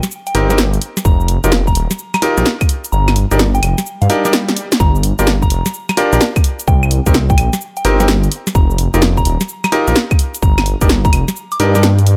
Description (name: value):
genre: UK garage, two-step garage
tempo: 128 BPM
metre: 4/4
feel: swing 66% on 16ths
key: unclear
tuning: A4 = 445 Hz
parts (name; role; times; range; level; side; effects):
- soft synth bell; melody; 0.0-11.6 s; F5 to D6; -26 LUFS; equal; chorus, phaser, delay
- punchy analog drum machine; drums; 0.0-12.2 s; cabasa, claves, hi-hat, snare drum; -20 LUFS; equal; overdrive
- bright grand piano; stabs; 0.3-11.8 s; C4 to Bb4; -19 LUFS; equal; vintage 12-bit sampler grit, delay
- dark detuned saw bass; bass; 0.3-12.2 s; Eb1 to G2; -16 LUFS; equal; none
- electronic kick drum; drums; 1.1-11.1 s; none; -16 LUFS; equal; none
- swell; sound effects; 4.0-4.8 s; none; -27 LUFS; equal; none
room: digital ambience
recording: none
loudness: -14 LUFS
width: mono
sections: 0.0-12.2 A section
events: kick drops out 2.9-4.8; swell 4.0-4.8; drum fill 4.4-4.8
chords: 0.0 Cm7; 0.8 F9sus4; 2.9 Ebmaj7; 4.8 Gm7; 6.7 Cm7; 8.3 F9sus4; 10.4 Ebmaj7